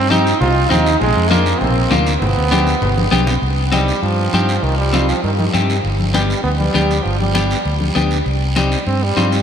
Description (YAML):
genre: latin, cumbia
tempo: 198 BPM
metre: 4/4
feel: straight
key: C harmonic minor from 3.4 s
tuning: A4 = 444 Hz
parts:
  - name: bright trombone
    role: second line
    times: 0.0-9.4 s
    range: C3 to F4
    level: -19 LUFS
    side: right 2 dB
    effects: ping-pong delay
  - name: fingered electric bass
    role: bass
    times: 0.0-9.4 s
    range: G1 to G2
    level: -18 LUFS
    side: equal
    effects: none
  - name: clean electric guitar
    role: accompaniment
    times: 0.1-9.4 s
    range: Bb3 to G4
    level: -20 LUFS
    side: left 3 dB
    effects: wide subtle chorus
  - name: congas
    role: percussion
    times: 0.1-9.3 s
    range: none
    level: -23 LUFS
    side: left 2 dB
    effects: none
  - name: guiro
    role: percussion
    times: 0.1-9.4 s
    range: none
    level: -26 LUFS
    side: right 4 dB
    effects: none
room: wet huge ambient reverb, RT60 7.3 s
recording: dreamy mix soaked in reverb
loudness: -13 LUFS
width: side -8 dB against mid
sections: 0.0-3.4 A section; 3.4-9.4 B section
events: trombone solo 0.0-3.4, 3.4-9.4; drum fill 3.0-3.4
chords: 0.0 Cm; 1.0 Bb; 2.2 G; 3.4 Cm; 5.8 G; 8.3 Cm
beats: 0.11 0.41 0.71 | 1.01 1.31 1.61 1.91 | 2.22 2.52 2.82 3.12 | 3.42 3.73 4.03 4.33 | 4.63 4.93 5.24 5.54 | 5.84 6.14 6.45 6.75 | 7.05 7.35 7.66 7.96 | 8.26 8.56 8.87 9.17